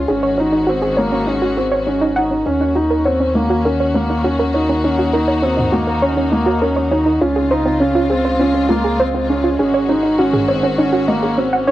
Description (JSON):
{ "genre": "piano and strings electronica", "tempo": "101 BPM", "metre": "4/4", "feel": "straight", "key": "Eb dorian", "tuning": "A4 = 441 Hz", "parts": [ { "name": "dark studio string section", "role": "sustained chords", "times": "0.0-11.7 s", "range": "Db3 to Gb4", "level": "-23 LUFS", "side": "left 2 dB", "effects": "cassette tape" }, { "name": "soft round pluck", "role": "arpeggios", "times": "0.0-11.7 s", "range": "C4 to Gb5", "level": "-19 LUFS", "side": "right 1 dB", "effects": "chorus, cassette tape, tape echo" }, { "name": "felt-muted upright piano", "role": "riff", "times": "0.0-11.7 s", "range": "Bb3 to Eb4", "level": "-17 LUFS", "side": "equal", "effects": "cassette tape, tape echo" }, { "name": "warm sub bass", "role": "bass", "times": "0.0-11.7 s", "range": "Ab1 to Eb2", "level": "-25 LUFS", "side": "equal", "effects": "none" }, { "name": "electronic toms", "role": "drums", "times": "5.6-5.7, 10.3-10.5 s", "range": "none", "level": "-23 LUFS", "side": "equal", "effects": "overdrive, cassette tape" } ], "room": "moderate small room reverb, RT60 0.5 s", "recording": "home recording on cassette", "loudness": "-14 LUFS", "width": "side -14 dB against mid", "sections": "0.0-2.5 A section; 2.5-11.7 B section", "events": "build-up 2.5-11.7; filter sweep on synth arpeggio sound 2.5-11.7", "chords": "0.1 Ab7sus4; 2.5 Ebm7; 7.2 Dbmaj7; 9.6 Ab7sus4" }